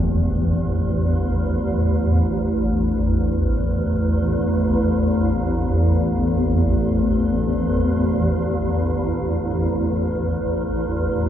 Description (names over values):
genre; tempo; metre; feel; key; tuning
dark ambient drone; free time; none; none; unclear; A4 = 440 Hz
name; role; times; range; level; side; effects
deep dark ambient pad; sustained chords; 0.0-11.3 s; A3 to C5; -25 LUFS; left 1 dB; chorus, built-in reverb
swarming drone; drone; 0.0-11.3 s; A1 to E2; -19 LUFS; equal; built-in reverb
room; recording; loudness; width
wet cathedral reverb, RT60 5.1 s; in a vast, echoing space; -18 LUFS; side -10 dB against mid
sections
0.0-11.3 A section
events
fade-out on ambient pad 0.0-11.3; filter sweep on synth drone 0.0-11.3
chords
0.0 Am